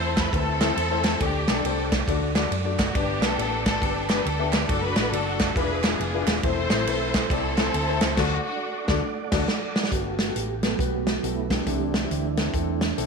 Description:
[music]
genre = uptempo gospel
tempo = 138 BPM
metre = 4/4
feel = swing 64% on 8ths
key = G major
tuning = A4 = 441 Hz
[part]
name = rich studio string section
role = melody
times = 0.0-9.3 s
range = A3 to C5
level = -28 LUFS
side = left 2 dB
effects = slapback echo
[part]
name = warm baby grand piano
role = accompaniment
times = 0.0-13.1 s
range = G2 to E5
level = -29 LUFS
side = left 10 dB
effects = none
[part]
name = mellow tonewheel organ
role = sustained chords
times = 0.0-13.1 s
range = E3 to E6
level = -31 LUFS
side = right 10 dB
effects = slow rotary speaker, chorus vibrato
[part]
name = hollow-body short-scale fingered electric bass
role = bass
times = 0.0-13.1 s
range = Eb1 to F#2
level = -30 LUFS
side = right 1 dB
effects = none
[part]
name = natural country drum kit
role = drums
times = 0.2-13.1 s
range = crash cymbal, hi-hat, kick drum, ride cymbal, snare drum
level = -26 LUFS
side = right 1 dB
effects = none
[part]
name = group handclap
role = percussion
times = 0.2-8.1 s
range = none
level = -35 LUFS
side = right 15 dB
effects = none
[sound]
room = moderate echo chamber reverb, RT60 1.3 s, small room ambience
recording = 1960s-style stereo with parts hard left and right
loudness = -22 LUFS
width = side -5 dB against mid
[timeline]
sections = 0.0-9.9 A section; 9.9-13.1 B section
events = band accent 8.2-9.9; drum fill 9.1-9.9; tonewheel organ solo 9.9-13.1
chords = 0.0 Am; 1.2 Dsus4; 2.1 D; 3.0 G; 4.7 D/F#; 5.6 E7b9; 6.4 Am/E; 8.2 D; 9.9 Gmaj9; 11.7 C69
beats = 0.34 0.77 | 1.21 1.65 2.08 2.52 | 2.95 3.39 3.82 4.26 | 4.70 5.13 5.57 6.00 | 6.44 6.87 7.31 7.74 | 8.18 8.62 9.05 9.49 | 9.93 10.36 10.80 11.23 | 11.67 12.11 12.55 12.98

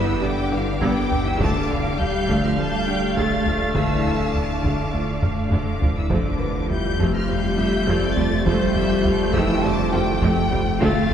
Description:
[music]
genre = cinematic, hybrid orchestral and electronic film score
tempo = 102 BPM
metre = 4/4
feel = straight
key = unclear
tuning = A4 = 436 Hz
[part]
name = rich chamber violin section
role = melody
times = 0.0-11.1 s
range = D6 to A6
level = -31 LUFS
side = left 4 dB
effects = none
[part]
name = rich symphonic violin section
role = second line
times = 0.0-11.1 s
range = C5 to A5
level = -30 LUFS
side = left 2 dB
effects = none
[part]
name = warm symphonic viola section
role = accompaniment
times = 0.0-11.1 s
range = D3 to F5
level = -27 LUFS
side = right 1 dB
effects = none
[part]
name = airy breathy pad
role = sustained chords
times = 0.1-11.1 s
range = D3 to D5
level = -31 LUFS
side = left 1 dB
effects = none
[part]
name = dark French horn section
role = sustained chords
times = 0.0-11.1 s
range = E3 to A4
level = -30 LUFS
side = left 4 dB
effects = none
[part]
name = warm trombone section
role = sustained chords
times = 0.0-11.1 s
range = D3 to B3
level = -28 LUFS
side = right 2 dB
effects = none
[part]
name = soft round pluck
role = arpeggios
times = 0.0-11.0 s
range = D3 to G4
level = -30 LUFS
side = left 1 dB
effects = none
[part]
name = rich symphonic cello section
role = bass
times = 0.0-11.1 s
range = D3 to A3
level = -28 LUFS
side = right 2 dB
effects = none
[part]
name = warm sub bass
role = bass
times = 0.0-11.1 s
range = D1 to G1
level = -31 LUFS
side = equal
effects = none
[part]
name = felt-muted upright piano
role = texture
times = 0.0-11.1 s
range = E4 to E6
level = -37 LUFS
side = left 2 dB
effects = none
[part]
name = clear symphonic double bass section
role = bass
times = 0.2-10.9 s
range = D2 to G2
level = -28 LUFS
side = right 2 dB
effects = none
[part]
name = taiko ensemble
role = drums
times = 0.8-11.1 s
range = none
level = -26 LUFS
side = equal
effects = none
[sound]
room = wet church reverb, RT60 3.5 s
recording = recorded in a church or concert hall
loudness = -18 LUFS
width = side -8 dB against mid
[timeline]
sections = 0.0-11.1 A section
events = drum fill 5.2-6.1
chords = 0.0 G; 1.4 Dm; 6.1 Fadd9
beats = 0.23 0.81 | 1.40 1.99 2.58 3.17 | 3.75 4.34 4.93 5.52 | 6.11 6.70 7.29 7.87 | 8.46 9.05 9.64 10.23 | 10.81

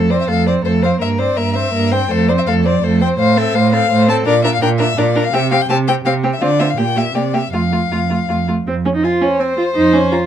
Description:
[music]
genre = quick classical-period movement for string quartet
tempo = 166 BPM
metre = 3/4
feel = rubato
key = F major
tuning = A4 = 441 Hz
[part]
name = warm violin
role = second line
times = 0.0-10.3 s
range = F4 to C5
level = -20 LUFS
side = left 3 dB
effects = none
[part]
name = warm viola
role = accompaniment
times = 0.0-10.3 s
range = A3 to F4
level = -18 LUFS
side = right 2 dB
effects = none
[part]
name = warm cello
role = bass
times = 0.0-10.1 s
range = F2 to D3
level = -18 LUFS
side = right 4 dB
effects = none
[part]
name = warm violin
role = melody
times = 0.1-10.2 s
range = C5 to Bb5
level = -19 LUFS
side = left 8 dB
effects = none
[sound]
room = light reverb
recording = dark, warm production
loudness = -13 LUFS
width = side -10 dB against mid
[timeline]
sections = 0.0-8.7 A section; 8.7-10.3 B section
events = none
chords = 0.0 F; 1.0 C7/G; 2.1 F; 3.2 F/A; 4.3 Bb; 5.3 C5; 6.4 Dm7; 6.8 Gm/Bb; 7.1 C7; 7.5 F; 8.7 F5; 9.8 N.C.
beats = 0.28 0.65 | 1.01 1.38 1.74 | 2.11 2.47 2.83 | 3.19 3.55 3.91 | 4.26 4.62 4.97 | 5.33 5.69 6.05 | 6.42 6.78 7.14 | 7.53 7.91 8.29 | 8.67 9.04 9.40 | 9.76 10.12

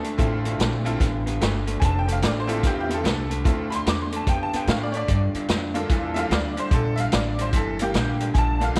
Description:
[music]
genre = electric blues shuffle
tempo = 147 BPM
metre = 4/4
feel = swing 64% on 8ths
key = D minor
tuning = A4 = 440 Hz
[part]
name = tack piano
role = accompaniment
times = 0.0-8.8 s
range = Bb3 to D6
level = -30 LUFS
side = equal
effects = none
[part]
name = electric guitar through a small old amp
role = riff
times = 0.0-8.8 s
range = G2 to B3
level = -31 LUFS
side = equal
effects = spring reverb
[part]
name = upright bass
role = bass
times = 0.0-8.8 s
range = F1 to A2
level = -29 LUFS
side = equal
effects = none
[part]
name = vintage drum kit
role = drums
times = 0.0-8.8 s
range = hi-hat, kick drum, snare drum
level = -27 LUFS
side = equal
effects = none
[sound]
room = light reverb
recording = none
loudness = -23 LUFS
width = mono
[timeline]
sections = 0.0-8.8 A section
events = none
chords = 0.0 Dm9; 5.1 Gm9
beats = | 0.19 0.60 1.00 1.41 | 1.82 2.23 2.64 3.04 | 3.45 3.86 4.27 4.68 | 5.08 5.49 5.90 6.31 | 6.72 7.12 7.53 7.94 | 8.35 8.76

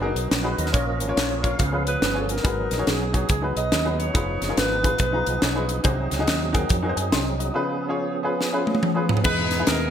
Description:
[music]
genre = uptempo gospel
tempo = 141 BPM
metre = 4/4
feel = swing 63% on 8ths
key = unclear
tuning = A4 = 444 Hz
[part]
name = clear upright piano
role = accompaniment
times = 0.0-9.9 s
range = G#2 to B#5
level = -27 LUFS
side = left 2 dB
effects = none
[part]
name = tonewheel organ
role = sustained chords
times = 0.0-9.9 s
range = B2 to E#5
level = -29 LUFS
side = right 4 dB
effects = slow rotary speaker, overdrive, chorus vibrato
[part]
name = fingered electric bass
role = bass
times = 0.0-9.9 s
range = F1 to F#2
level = -27 LUFS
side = equal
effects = none
[part]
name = crisp fusion drum kit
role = drums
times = 0.2-9.8 s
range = crash cymbal, hi-hat, kick drum, snare drum, toms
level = -24 LUFS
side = equal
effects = gated reverb
[part]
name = breathy alto saxophone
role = melody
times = 1.9-5.7 s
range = G#4 to D#5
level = -27 LUFS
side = equal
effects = none
[part]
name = clear saxophone section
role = melody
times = 9.2-9.9 s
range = D#4 to B4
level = -24 LUFS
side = left 1 dB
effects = none
[sound]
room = moderate plate reverb, RT60 1.3 s, studio reverb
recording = bright 1980s-style digital production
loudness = -20 LUFS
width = side -9 dB against mid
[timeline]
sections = 0.0-9.3 A section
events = drum fill 8.4-9.3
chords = 0.0 B6; 0.7 A#m; 1.6 C#7; 2.4 G#m7; 4.1 Fm7b5; 5.8 G#7/B#; 7.6 C#7; 9.3 Emaj7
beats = 0.31 | 0.74 1.16 1.59 2.02 | 2.44 2.87 3.29 3.72 | 4.15 4.57 5.00 5.42 | 5.85 6.28 6.70 7.13 | 7.55 7.98 8.40 8.83 | 9.25 9.68

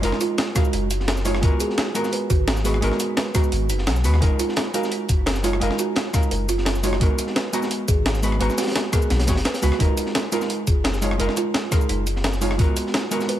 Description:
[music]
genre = liquid drum and bass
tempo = 172 BPM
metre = 4/4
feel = straight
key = F# major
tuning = A4 = 440 Hz
[part]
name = hollow-body jazz guitar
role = accompaniment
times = 0.0-13.4 s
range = G#3 to A#5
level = -26 LUFS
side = equal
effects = dub echo
[part]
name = kalimba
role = arpeggios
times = 0.0-13.4 s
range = D#4 to F#5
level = -28 LUFS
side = right 5 dB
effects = dub echo
[part]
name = saturated sub bass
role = bass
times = 0.0-12.7 s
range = F#1 to D#2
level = -23 LUFS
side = equal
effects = none
[part]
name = breakbeat sampler-style drum kit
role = drums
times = 0.0-13.4 s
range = hi-hat, rim click, shaker, snare drum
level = -26 LUFS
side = equal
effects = none
[part]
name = crunchy breakbeat drum kit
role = drums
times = 0.0-13.4 s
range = hi-hat, snare drum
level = -31 LUFS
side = equal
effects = high-pass filter on hats, high-pass filter on snare, high-pass filter on room
[part]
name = electronic kick drum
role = drums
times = 0.6-12.7 s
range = none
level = -20 LUFS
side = equal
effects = none
[sound]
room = studio reverb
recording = none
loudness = -19 LUFS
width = side -12 dB against mid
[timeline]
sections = 0.0-13.4 A section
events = none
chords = 0.0 F#maj13; 1.4 G#m9; 4.2 F#maj13; 7.0 G#m9; 9.8 F#maj13; 12.6 G#m9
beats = | 0.03 0.38 0.73 1.08 | 1.43 1.78 2.13 2.48 | 2.82 3.17 3.52 3.87 | 4.22 4.57 4.92 5.27 | 5.62 5.96 6.31 6.66 | 7.01 7.36 7.71 8.06 | 8.41 8.75 9.10 9.45 | 9.80 10.15 10.50 10.85 | 11.20 11.54 11.89 12.24 | 12.59 12.94 13.29

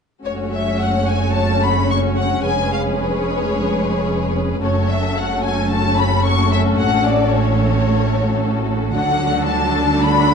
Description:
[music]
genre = classical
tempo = 110 BPM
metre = 4/4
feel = straight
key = F# minor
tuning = A4 = 440 Hz
[part]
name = warm symphonic violin section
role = melody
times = 0.2-10.3 s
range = C#5 to C#6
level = -21 LUFS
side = left 4 dB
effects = none
[part]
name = warm symphonic viola section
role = accompaniment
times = 0.2-10.3 s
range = F#3 to D4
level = -21 LUFS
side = equal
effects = none
[part]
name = rich symphonic cello section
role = bass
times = 0.2-10.3 s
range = E#2 to D3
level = -23 LUFS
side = right 2 dB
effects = none
[part]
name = rich studio violin section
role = second line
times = 0.3-10.3 s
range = F#4 to C#5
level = -24 LUFS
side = left 4 dB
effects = none
[part]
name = rich symphonic double bass section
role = bass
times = 0.3-10.3 s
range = E#1 to D2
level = -22 LUFS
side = right 3 dB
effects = none
[sound]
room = wet recital hall reverb, RT60 1.5 s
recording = dark, warm production, nothing above 10.3 kHz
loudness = -15 LUFS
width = side -6 dB against mid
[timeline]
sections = 0.2-10.3 A section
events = none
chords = 0.2 F#m; 2.4 C#7/E#; 4.6 F#m; 6.8 F#m/A; 9.0 D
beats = | 0.25 0.80 1.35 1.90 | 2.45 3.00 3.54 4.08 | 4.63 5.17 5.71 6.26 | 6.79 7.33 7.88 8.41 | 8.95 9.49 10.03

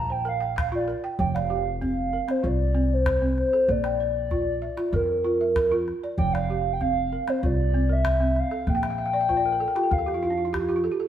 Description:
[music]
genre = west african traditional, West African string and xylophone music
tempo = 96 BPM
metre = 4/4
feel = straight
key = F major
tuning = A4 = 439 Hz
[part]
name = hollow clarinet-like synth lead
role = melody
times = 0.0-10.8 s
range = Bb4 to Bb5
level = -25 LUFS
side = equal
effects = chorus, phaser
[part]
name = balafon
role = arpeggios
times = 0.0-11.1 s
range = F3 to G5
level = -28 LUFS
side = right 2 dB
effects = none
[part]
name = upright bass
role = bass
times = 0.0-10.9 s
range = F1 to F2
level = -28 LUFS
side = equal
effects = none
[part]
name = calabash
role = percussion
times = 0.3-10.8 s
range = none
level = -31 LUFS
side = left 1 dB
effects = none
[sound]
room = wet stone room reverb, RT60 1.3 s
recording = band playing live in one room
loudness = -22 LUFS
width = side -10 dB against mid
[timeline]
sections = 0.0-1.2 A section; 1.2-11.1 B section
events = soft synth lead solo 0.0-1.2; balafon fill 8.8-11.1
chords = 0.0 Bb; 1.2 F5; 3.7 Bb; 6.2 F5; 8.7 Bb5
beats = 0.58 | 1.20 1.83 2.45 3.07 | 3.70 4.32 4.94 5.57 | 6.19 6.81 7.43 8.05 | 8.67 9.29 9.91 10.53

